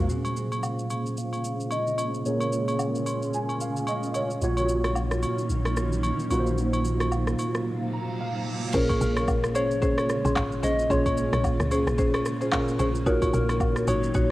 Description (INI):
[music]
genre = amapiano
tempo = 111 BPM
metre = 4/4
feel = swing 58% on 16ths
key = Bb minor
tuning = A4 = 441 Hz
[part]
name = tine electric piano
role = accompaniment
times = 0.0-14.3 s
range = Bb2 to C6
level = -28 LUFS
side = right 1 dB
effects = ensemble chorus, low-pass filter, cassette tape
[part]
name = granular cloud pad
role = sustained chords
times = 0.0-14.3 s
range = C3 to F5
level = -34 LUFS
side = equal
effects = built-in reverb, sidechain pumping, low-pass filter, cassette tape
[part]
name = buzzing marimba with medium mallets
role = stabs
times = 0.0-0.1, 8.7-14.3 s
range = Db4 to C6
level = -29 LUFS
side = left 1 dB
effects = cassette tape, tape echo
[part]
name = woody log drum bass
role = bass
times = 0.0-0.1, 8.7-14.3 s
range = Ab1 to Db2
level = -29 LUFS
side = equal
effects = none
[part]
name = soft struck synth lead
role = melody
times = 0.1-4.1, 8.7-14.3 s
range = Bb4 to Ab5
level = -30 LUFS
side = left 1 dB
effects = chorus, low-pass filter, cassette tape, tape echo
[part]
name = afro-pop drum kit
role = drums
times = 0.1-14.3 s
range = crash cymbal, handclaps, kick drum, rim click, shaker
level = -31 LUFS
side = equal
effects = cassette tape
[part]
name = agogo bells and woodblock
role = percussion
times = 0.2-14.0 s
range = none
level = -34 LUFS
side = equal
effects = none
[part]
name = punchy sub bass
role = bass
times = 4.4-7.3 s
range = Bb1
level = -28 LUFS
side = equal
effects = none
[part]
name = reverse cymbal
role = sound effects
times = 7.9-8.7 s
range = none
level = -39 LUFS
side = right 4 dB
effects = none
[sound]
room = light reverb, digital ambience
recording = home recording on cassette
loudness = -23 LUFS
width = side -17 dB against mid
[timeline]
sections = 0.1-8.7 A section; 8.7-14.3 B section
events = filter sweep 0.1-8.7; tine electric piano fill 2.8-4.4, 7.7-8.7; break 7.7-8.7; reverse cymbal 7.9-8.7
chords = 0.1 Bbm9; 4.4 Ebm7/Bb; 6.3 Ab13/Bb; 8.7 Bbm9; 13.1 Ebm7